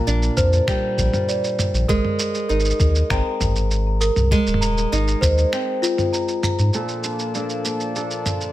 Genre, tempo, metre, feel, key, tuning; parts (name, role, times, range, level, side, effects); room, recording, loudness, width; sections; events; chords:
folktronica; 99 BPM; 4/4; straight; Bb major; A4 = 436 Hz
celesta; second line; 0.0-6.8 s; F4 to Bb5; -24 LUFS; equal; ping-pong delay
flamenco guitar; arpeggios; 0.0-8.5 s; Bb2 to A4; -25 LUFS; right 1 dB; low-pass filter, tape echo
warm sub bass; bass; 0.1-6.7 s; Eb1 to Ab2; -19 LUFS; equal
lo-fi sampler-style drum kit; drums; 0.1-8.5 s; finger snaps, shaker, toms; -26 LUFS; right 1 dB; studio reverb
electronic kick drum; drums; 0.4-5.3 s; -23 LUFS; equal; studio reverb
pedal harmonium; sustained chords; 6.7-8.5 s; Bb2 to A4; -28 LUFS; left 3 dB
light reverb, studio reverb; -18 LUFS; side -14 dB against mid
0.0-6.7 A section; 6.7-8.5 B section
break 5.5-6.7
0.0 Bb69; 1.9 Ab; 6.7 Bbmaj7